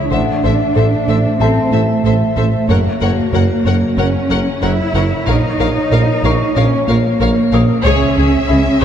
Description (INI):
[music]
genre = cinematic, hybrid orchestral and electronic film score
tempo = 93 BPM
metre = 4/4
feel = straight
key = unclear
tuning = A4 = 440 Hz
[part]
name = mellow French horn section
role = sustained chords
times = 0.0-8.8 s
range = A#3 to E5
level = -23 LUFS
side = left 3 dB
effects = none
[part]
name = warm symphonic cello section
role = bass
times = 0.0-8.8 s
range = A3 to E4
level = -18 LUFS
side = right 2 dB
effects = none
[part]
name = felt-muted upright piano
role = texture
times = 0.0-8.8 s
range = A4 to D#6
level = -28 LUFS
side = left 3 dB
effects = digital delay
[part]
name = rich studio violin section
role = melody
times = 0.1-8.8 s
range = E5 to F#5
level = -25 LUFS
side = left 4 dB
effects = none
[part]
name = rich symphonic violin section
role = second line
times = 0.1-8.8 s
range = E4 to C#5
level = -24 LUFS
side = left 4 dB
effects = none
[part]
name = warm symphonic viola section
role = accompaniment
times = 0.1-8.8 s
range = G#4 to A#4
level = -24 LUFS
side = left 1 dB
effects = none
[part]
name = harp-like synth pluck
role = arpeggios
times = 0.1-8.8 s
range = C#3 to A#4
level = -25 LUFS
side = left 1 dB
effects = none
[part]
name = round analog bass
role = riff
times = 0.1-8.8 s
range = C#2 to A#3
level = -18 LUFS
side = right 1 dB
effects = none
[part]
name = rich symphonic double bass section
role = bass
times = 0.1-8.8 s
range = F#1 to C#2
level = -20 LUFS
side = right 2 dB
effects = none
[part]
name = warm tuba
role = bass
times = 0.1-8.6 s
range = F#1 to C#2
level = -22 LUFS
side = right 2 dB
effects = none
[sound]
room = wet concert hall reverb, RT60 2.5 s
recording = dark, warm production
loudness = -12 LUFS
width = side -9 dB against mid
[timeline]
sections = 0.0-8.8 A section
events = none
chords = 0.1 Am; 2.7 F#; 5.3 A#m; 7.9 C#m